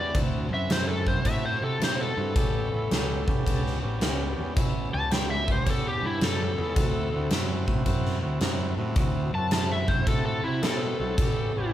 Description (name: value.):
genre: blues rock power trio and southern rock.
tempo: 109 BPM.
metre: 4/4.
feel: swing 66% on 8ths.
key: unclear.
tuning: A4 = 440 Hz.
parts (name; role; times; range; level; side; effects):
overdriven slide guitar; melody; 0.0-11.7 s; E4 to A5; -29 LUFS; left 2 dB; none.
tonewheel organ; sustained chords; 0.0-11.7 s; B3 to G4; -34 LUFS; right 2 dB; overdrive.
fuzz picked electric bass; bass; 0.0-11.7 s; A1 to C3; -30 LUFS; equal; overdrive.
huge arena drum kit; drums; 0.1-11.4 s; crash cymbal, kick drum, snare drum; -27 LUFS; equal; none.
room: little or no reverb.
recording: band playing live in one room.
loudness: -24 LUFS.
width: side -12 dB against mid.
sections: 0.0-11.7 A section.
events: electric slide guitar solo 0.0-11.7.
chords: 0.2 D7; 2.4 A7; 6.8 D7; 11.2 A7.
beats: | 0.15 0.70 1.25 1.81 | 2.36 2.91 3.46 4.01 | 4.57 5.12 5.67 6.22 | 6.77 7.32 7.87 8.43 | 8.98 9.53 10.08 10.63 | 11.18.